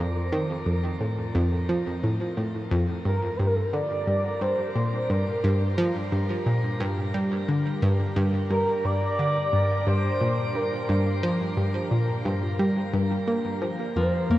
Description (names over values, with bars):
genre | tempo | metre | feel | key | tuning
ambient, sequencer-driven space music | 88 BPM | 4/4 | straight | G minor | A4 = 440 Hz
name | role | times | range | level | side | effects
expressive synth lead | melody | 0.0-14.4 s | A4 to D5 | -30 LUFS | equal | ensemble chorus, tape echo
sweeping resonant pad | sustained chords | 0.0-14.4 s | C4 to G5 | -36 LUFS | left 1 dB | chorus
analog pluck | riff | 0.0-14.4 s | F2 to Bb3 | -24 LUFS | equal | chorus, tape echo
Celtic harp | arpeggios | 14.0-14.4 s | F3 to Bb3 | -23 LUFS | left 1 dB | auto-pan
room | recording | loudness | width
wet shimmer reverb, RT60 7.7 s | worn, warbling old tape, cassette tape, warbly pitch drift | -23 LUFS | side -15 dB against mid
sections
0.0-14.4 A section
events
fade-in on analog synth pad 0.0-14.4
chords
0.0 Fsus4; 3.1 Gm7